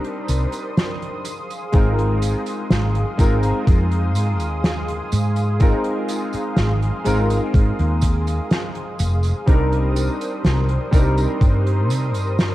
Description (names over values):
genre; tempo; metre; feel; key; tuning
vaporwave; 62 BPM; 4/4; straight; unclear; A4 = 440 Hz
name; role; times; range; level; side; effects
warm electric grand piano; accompaniment; 0.0-12.5 s; G3 to Bb4; -24 LUFS; equal; ensemble chorus, tape echo
lush unison pad; sustained chords; 0.0-12.5 s; Ab4 to Eb6; -29 LUFS; equal; chorus
soft-mallet drum kit; drums; 0.0-12.5 s; hi-hat, snare drum, tambourine; -25 LUFS; equal; none
woody fretless electric bass; bass; 0.3-12.5 s; F1 to C3; -19 LUFS; equal; lush chorus
electronic kick drum; drums; 1.7-11.6 s; none; -15 LUFS; equal; overdrive
room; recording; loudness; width
small room ambience; dark, warm production; -17 LUFS; side -16 dB against mid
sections
0.0-12.5 A section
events
none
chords
0.0 Cm9; 1.3 Ab6; 9.5 Cm9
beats
0.77 | 1.74 2.71 3.67 4.64 | 5.61 6.58 7.54 8.51 | 9.48 10.45 11.42 12.38